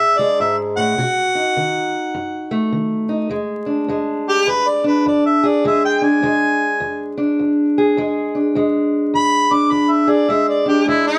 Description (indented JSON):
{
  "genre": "acoustic country blues, solo or duo",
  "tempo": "103 BPM",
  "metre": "4/4",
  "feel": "swing 62% on 8ths",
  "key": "E mixolydian",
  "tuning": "A4 = 440 Hz",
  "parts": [
    { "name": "mellow harmonica", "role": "melody", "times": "0.0-11.2 s", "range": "E4 to D6", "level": "-19 LUFS", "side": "equal", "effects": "none" },
    { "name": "fingerpicked steel-string acoustic guitar", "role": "accompaniment", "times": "0.0-11.2 s", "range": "E2 to G#4", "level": "-20 LUFS", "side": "equal", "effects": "none" }
  ],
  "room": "moderate stone room reverb, RT60 1.1 s",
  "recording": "band playing live in one room, vinyl crackle",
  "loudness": "-17 LUFS",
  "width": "mono",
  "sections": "0.0-3.3 A section; 3.3-11.2 B section",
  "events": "harmonica solo 3.3-11.2",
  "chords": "0.0 E7; 1.0 B7; 3.3 E7"
}